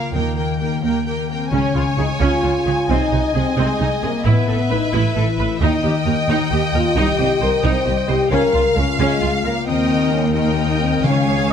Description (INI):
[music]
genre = cinematic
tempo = 88 BPM (dotted quarters)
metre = 6/8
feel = straight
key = unclear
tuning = A4 = 440 Hz
[part]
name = warm symphonic violin section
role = melody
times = 0.0-11.5 s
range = E5 to Ab5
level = -26 LUFS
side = left 1 dB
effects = none
[part]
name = rich symphonic violin section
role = second line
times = 0.0-11.5 s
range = Bb4 to F5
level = -26 LUFS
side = left 1 dB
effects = none
[part]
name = clear symphonic viola section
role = accompaniment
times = 0.0-11.5 s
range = Bb3 to Db5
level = -25 LUFS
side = right 2 dB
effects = none
[part]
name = concert harp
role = arpeggios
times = 0.0-11.5 s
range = A2 to Eb5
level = -25 LUFS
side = left 10 dB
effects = none
[part]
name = rich symphonic cello section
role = bass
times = 0.0-11.5 s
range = C2 to Db3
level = -23 LUFS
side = right 3 dB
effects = none
[part]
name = rich symphonic double bass section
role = bass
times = 0.1-11.5 s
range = A1 to Eb2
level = -23 LUFS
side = right 3 dB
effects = none
[part]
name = mellow French horn section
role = sustained chords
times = 0.6-11.5 s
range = Ab3 to C5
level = -21 LUFS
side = left 3 dB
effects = none
[part]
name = timpani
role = percussion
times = 1.5-2.2, 11.0-11.5 s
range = Db3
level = -24 LUFS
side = left 1 dB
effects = none
[sound]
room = moderate scoring stage reverb, RT60 1.8 s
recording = close, detailed microphones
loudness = -15 LUFS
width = side -8 dB against mid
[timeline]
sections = 0.0-1.5 A section; 1.5-11.5 B section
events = build-up 0.0-1.5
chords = 0.1 Eb; 1.5 Db; 2.9 Ab/C; 4.2 Asus2; 5.6 Eb; 7.0 Cm; 8.3 Bbm/Db; 9.7 Eb